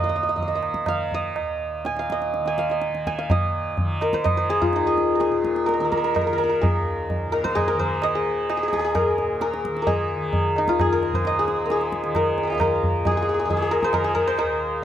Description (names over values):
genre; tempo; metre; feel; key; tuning
indian classical, Hindustani; 129 BPM; 7/4; uneven beats; Eb raga durga; A4 = 435 Hz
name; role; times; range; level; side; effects
santur; melody; 0.0-14.8 s; Eb4 to Eb6; -21 LUFS; equal; none
tanpura; drone; 0.0-14.8 s; Eb2 to Eb3; -32 LUFS; left 1 dB; none
tabla; percussion; 0.4-14.6 s; none; -26 LUFS; right 1 dB; none
room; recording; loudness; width
light reverb; none; -20 LUFS; side -10 dB against mid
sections
0.0-3.3 A section; 3.3-14.8 B section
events
speeding up 0.0-14.8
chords
none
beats
0.39 0.88 1.36 1.85 2.34 2.82 | 3.30 3.78 4.26 4.74 5.22 5.69 6.16 | 6.63 7.10 7.57 8.04 8.50 8.96 9.43 | 9.88 10.34 10.80 11.25 11.71 12.16 12.61 | 13.06 13.50 13.95 14.39 14.84